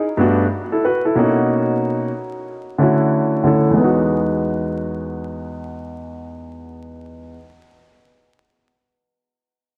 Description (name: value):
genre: hip hop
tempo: 92 BPM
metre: 4/4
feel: swing 62% on 16ths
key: E major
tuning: A4 = 440 Hz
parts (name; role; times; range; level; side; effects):
- warm grand piano; solo; 0.0-7.5 s; E2 to B4; -20 LUFS; equal; low-pass filter, analog delay
room: moderate plate reverb, RT60 2.5 s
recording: worn, warbling old tape, cassette tape, vinyl crackle, warbly pitch drift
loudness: -18 LUFS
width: mono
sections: 0.0-3.8 A section; 3.8-6.4 B section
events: filter sweep on grand piano 0.0-3.8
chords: 0.0 Gmaj9; 1.2 Bmaj9; 2.5 Dmaj9; 3.8 Emaj9